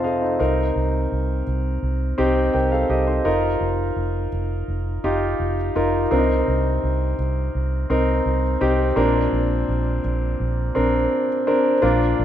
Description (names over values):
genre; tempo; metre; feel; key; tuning
piano-driven pop; 84 BPM; 4/4; straight; unclear; A4 = 439 Hz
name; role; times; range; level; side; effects
clear concert grand piano; accompaniment; 0.0-12.2 s; F1 to C6; -20 LUFS; left 1 dB; none
vintage muted fingered electric bass; bass; 0.4-12.2 s; F1 to C2; -23 LUFS; right 1 dB; none
room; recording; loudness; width
moderate lush hall reverb, RT60 2.5 s; rough home demo mix; -19 LUFS; side -10 dB against mid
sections
0.4-11.8 A section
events
grand piano fill 0.0-0.4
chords
0.4 Cm7; 3.3 F7sus4; 6.1 Cm7; 9.0 Bbadd9